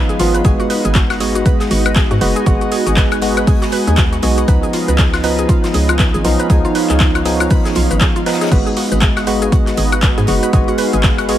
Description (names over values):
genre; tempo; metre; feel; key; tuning
deep house; 119 BPM; 4/4; swing 59% on 16ths; G# dorian; A4 = 440 Hz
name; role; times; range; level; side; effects
warm analog pad; sustained chords; 0.0-11.4 s; G#3 to E#5; -24 LUFS; equal; chorus, sidechain pumping
tine electric piano; stabs; 0.0-11.4 s; E#3 to F#4; -18 LUFS; equal; medium stereo tremolo, ping-pong delay
ethereal airy pad; texture; 0.0-11.4 s; D#4 to G#5; -25 LUFS; right 3 dB; ensemble chorus, built-in reverb, sidechain pumping
mallet-like synth pluck; arpeggios; 0.1-11.3 s; E#4 to B4; -23 LUFS; right 2 dB; chorus, sidechain pumping, ping-pong delay
deep house drum kit; drums; 0.1-11.4 s; crash cymbal, handclaps, hi-hat, shaker, woodblock; -21 LUFS; left 2 dB; overdrive
hollow knocking FM bass; bass; 0.2-11.4 s; F#1 to G#2; -18 LUFS; equal; sidechain pumping
tight metal drum kit; drums; 0.2-11.4 s; hi-hat, snare drum; -31 LUFS; left 2 dB; none
electronic kick drum; drums; 0.4-11.2 s; none; -14 LUFS; equal; overdrive
room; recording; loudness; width
digital ambience; vinyl crackle; -12 LUFS; side -12 dB against mid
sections
0.0-11.4 A section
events
none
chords
0.4 G#m7; 4.5 C#9; 8.5 G#m7